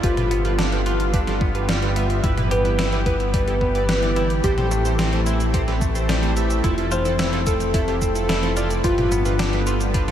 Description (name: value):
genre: synthwave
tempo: 109 BPM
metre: 4/4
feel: straight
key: A minor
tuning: A4 = 440 Hz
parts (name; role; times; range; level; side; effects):
- soft octave-layered synth lead; melody; 0.0-9.8 s; F4 to C5; -26 LUFS; left 1 dB; chorus, tremolo, tape echo
- soft synth bell; second line; 0.0-9.8 s; F4 to C5; -33 LUFS; right 1 dB; none
- lush unison pad; sustained chords; 0.0-10.1 s; D3 to G4; -27 LUFS; equal; chorus, sidechain pumping
- direct-recorded clean electric guitar; arpeggios; 0.0-10.1 s; G3 to B4; -31 LUFS; left 2 dB; lush chorus, tape echo
- chorused polysynth; stabs; 0.0-10.1 s; E4 to E5; -29 LUFS; right 3 dB; tape echo
- chorused synth bass; bass; 0.0-10.1 s; F1 to A1; -23 LUFS; equal; none
- electronic kick drum; drums; 0.0-10.1 s; none; -23 LUFS; equal; overdrive
- gated 80s digital drum machine; drums; 0.0-10.1 s; cabasa, hi-hat, snare drum, toms; -27 LUFS; equal; gated reverb, gated reverb snare, overdrive
room: moderate huge ambient reverb, RT60 8.4 s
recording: dreamy mix soaked in reverb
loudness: -18 LUFS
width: side -10 dB against mid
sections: 0.0-10.1 A section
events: none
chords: 0.0 G7; 2.2 Em/G; 4.4 Am7; 6.6 Fmaj7; 8.8 G7